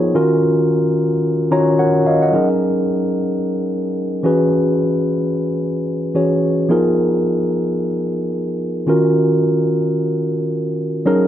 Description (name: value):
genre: amapiano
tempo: 110 BPM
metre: 4/4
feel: swing 58% on 16ths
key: Eb minor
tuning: A4 = 440 Hz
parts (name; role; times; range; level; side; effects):
- mellow tine electric piano; solo; 0.0-11.3 s; Eb3 to Bb5; -15 LUFS; equal; none
room: light reverb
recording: none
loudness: -15 LUFS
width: side -11 dB against mid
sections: 0.0-2.3 A section; 2.3-11.1 B section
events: drop 0.0-2.3; tine electric piano fill 1.2-2.3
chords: 0.1 Ebm9; 2.3 Gb69; 4.2 E6; 6.7 Abm69/F; 8.9 Ebm9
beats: | 0.15 0.69 1.24 1.78 | 2.33 2.87 3.42 3.96 | 4.51 5.06 5.60 6.15 | 6.69 7.24 7.78 8.33 | 8.87 9.42 9.96 10.51 | 11.06